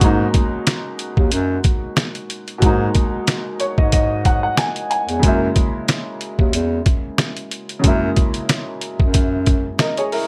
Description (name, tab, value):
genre	hip hop, boom-bap hip-hop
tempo	92 BPM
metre	4/4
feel	swing 54% on 16ths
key	G# minor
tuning	A4 = 440 Hz
part	warm upright piano	accompaniment	0.0-10.3 s	B2 to G#5	-24 LUFS	equal	cassette tape, high-pass filter, low-pass filter, plate reverb
part	mellow bass clarinet	bass	0.0-9.8 s	D#2 to G#2	-23 LUFS	equal	none
part	trip hop sampler-style drum kit	drums	0.0-10.3 s	hi-hat, kick drum, snare drum	-20 LUFS	equal	none
room	light reverb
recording	none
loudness	-18 LUFS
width	mono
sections	0.0-10.3 A section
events	none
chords	0.0 G#m7; 5.2 F#7